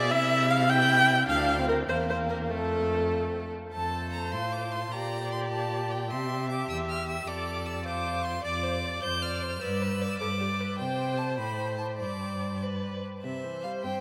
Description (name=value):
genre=quick classical-period movement for string quartet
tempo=101 BPM (dotted quarters)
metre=6/8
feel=rubato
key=F major, C major from 8.4 s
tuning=A4 = 439 Hz
part: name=clear violin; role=melody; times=0.0-14.0 s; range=A4 to G6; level=-36 LUFS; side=equal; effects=none
part: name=rich violin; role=second line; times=0.0-14.0 s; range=A3 to D5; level=-37 LUFS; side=equal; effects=none
part: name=rich viola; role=accompaniment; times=0.0-14.0 s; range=C3 to G5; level=-32 LUFS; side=equal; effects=none
part: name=rich cello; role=bass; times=0.0-14.0 s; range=D2 to C3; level=-34 LUFS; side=equal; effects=none
room=wet cathedral reverb, RT60 6.1 s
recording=in a vast, echoing space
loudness=-29 LUFS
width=mono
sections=0.0-3.7 A section; 3.7-13.2 A section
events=none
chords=0.1 C; 1.3 Dm; 1.9 C7/E; 2.5 F; 4.9 Gm/Bb; 6.1 C; 7.3 F; 9.6 G; 10.8 C5; 11.4 Am; 12.0 Gsus4; 13.2 C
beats=| 0.11 0.70 | 1.29 1.89 | 2.50 3.12 | 3.73 4.32 | 4.92 5.52 | 6.10 6.69 | 7.27 7.85 | 8.44 9.02 | 9.61 10.20 | 10.78 11.38 | 11.99 12.62 | 13.24 13.83